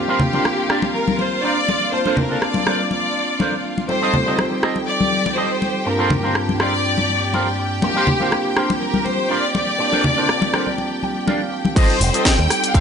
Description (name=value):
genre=nu-disco, nu disco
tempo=122 BPM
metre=4/4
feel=swing 54% on 16ths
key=unclear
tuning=A4 = 440 Hz
part: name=rich studio violin section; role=melody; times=0.0-12.8 s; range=G4 to G5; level=-21 LUFS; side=left 1 dB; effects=tape echo
part: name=tine electric piano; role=accompaniment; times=0.0-12.8 s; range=G2 to A5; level=-24 LUFS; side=right 1 dB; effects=lush chorus, sidechain pumping
part: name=clear studio string section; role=sustained chords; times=0.0-12.8 s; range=F4 to G5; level=-28 LUFS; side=equal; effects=sidechain pumping, low-pass filter
part: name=electric guitar with an envelope filter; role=riff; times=0.1-12.8 s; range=D4 to G5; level=-24 LUFS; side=right 2 dB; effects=wide subtle chorus
part: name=congas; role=percussion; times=0.2-11.7 s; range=none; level=-23 LUFS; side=left 2 dB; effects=none
part: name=house drum kit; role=drums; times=0.5-12.8 s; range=crash cymbal, hi-hat, rim click, shaker, snare drum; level=-22 LUFS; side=equal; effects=none
part: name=electronic kick drum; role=drums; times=11.8-12.8 s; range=none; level=-15 LUFS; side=equal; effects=none
part: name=picked electric bass with an envelope filter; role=bass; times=12.0-12.8 s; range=F1 to Eb2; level=-19 LUFS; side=equal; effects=none
room=light reverb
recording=nothing above 10.6 kHz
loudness=-16 LUFS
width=side -7 dB against mid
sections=0.0-11.8 A section; 11.8-12.8 B section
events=clean electric guitar fill 10.8-11.8; drop 11.8-12.8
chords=0.0 C9sus4; 1.9 Bbmaj9; 3.9 F9; 5.9 Gm11; 7.8 C9sus4; 9.8 Bbmaj9; 11.8 F9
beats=0.45 0.94 1.44 | 1.93 2.42 2.91 3.40 | 3.90 4.39 4.88 5.37 | 5.86 6.35 6.85 7.34 | 7.83 8.32 8.81 9.30 | 9.80 10.29 10.78 11.27 | 11.76 12.26 12.75